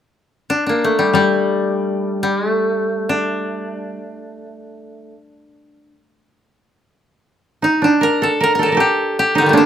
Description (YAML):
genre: japanese traditional, Japanese chamber music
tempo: free time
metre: none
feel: none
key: D miyako bushi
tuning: A4 = 442 Hz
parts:
  - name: koto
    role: melody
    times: 0.5-9.7 s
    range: D3 to Bb4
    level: -17 LUFS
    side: left 1 dB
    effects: none
  - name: koto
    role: accompaniment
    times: 1.1-3.9 s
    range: G3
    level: -22 LUFS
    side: left 4 dB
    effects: none
  - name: koto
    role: second line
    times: 7.6-9.7 s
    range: D4 to G5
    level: -16 LUFS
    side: right 3 dB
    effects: none
room: light reverb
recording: close, detailed microphones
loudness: -15 LUFS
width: side -9 dB against mid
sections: 0.0-7.2 A section; 7.2-9.7 B section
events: none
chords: none